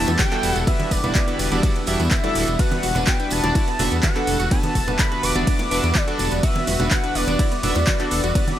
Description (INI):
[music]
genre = progressive house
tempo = 125 BPM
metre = 4/4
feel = straight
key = unclear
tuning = A4 = 440 Hz
[part]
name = expressive synth lead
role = melody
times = 0.0-8.6 s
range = D5 to D6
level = -26 LUFS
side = equal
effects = analog chorus, tape echo
[part]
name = supersaw pad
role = sustained chords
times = 0.0-8.6 s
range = D3 to B4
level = -30 LUFS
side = equal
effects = vintage 12-bit sampler grit, sidechain pumping
[part]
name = chorused polysynth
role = stabs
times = 0.0-8.6 s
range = G3 to E5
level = -26 LUFS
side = right 1 dB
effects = sidechain pumping, tape echo
[part]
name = dark detuned saw bass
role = bass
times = 0.0-8.3 s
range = D1 to E2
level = -24 LUFS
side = equal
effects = sidechain pumping
[part]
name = drifting glass-harmonics texture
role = texture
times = 0.0-8.6 s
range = E4 to E5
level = -36 LUFS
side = equal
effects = none
[part]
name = wide unison pluck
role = arpeggios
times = 0.1-8.5 s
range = B3 to D5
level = -29 LUFS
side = equal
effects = sidechain pumping, tape echo
[part]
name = pop drum kit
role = drums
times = 0.1-8.6 s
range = handclaps, hi-hat, ride cymbal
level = -27 LUFS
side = right 1 dB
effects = overdrive, sidechain pumping on hats, sidechain pumping on cymbals
[part]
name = bongos and congas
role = percussion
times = 0.1-8.6 s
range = none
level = -30 LUFS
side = right 1 dB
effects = sidechain pumping on perc
[part]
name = tambourine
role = percussion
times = 0.1-8.5 s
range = none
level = -33 LUFS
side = right 4 dB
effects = none
[part]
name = electronic kick drum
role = drums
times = 0.2-8.5 s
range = none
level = -21 LUFS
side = equal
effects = overdrive
[sound]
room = light reverb, digital ambience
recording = none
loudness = -18 LUFS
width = side -12 dB against mid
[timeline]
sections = 0.0-8.6 A section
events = none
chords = 0.0 Em9; 2.6 Bm/E